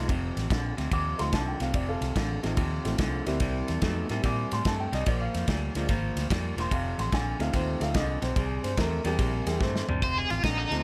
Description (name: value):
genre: electric blues shuffle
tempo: 145 BPM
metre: 4/4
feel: swing 66% on 8ths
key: F mixolydian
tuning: A4 = 435 Hz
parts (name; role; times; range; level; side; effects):
- warm upright piano; accompaniment; 0.0-10.8 s; F3 to D6; -35 LUFS; equal; plate reverb
- electric guitar through a small old amp; riff; 0.0-10.8 s; F2 to A3; -35 LUFS; equal; none
- vintage muted fingered electric bass; bass; 0.0-10.8 s; E1 to Bb2; -34 LUFS; equal; none
- natural country drum kit; drums; 0.1-10.8 s; kick drum, ride cymbal, snare drum, toms; -33 LUFS; equal; none
- overdriven semi-hollow guitar; melody; 10.0-10.8 s; Eb4 to C5; -30 LUFS; equal; tremolo
room: light reverb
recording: none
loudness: -28 LUFS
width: mono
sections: 0.0-10.0 A section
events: drum fill 9.6-10.0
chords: 0.0 F7; 3.4 C7; 5.1 Bb7; 6.7 F7; 8.4 C7; 10.0 F7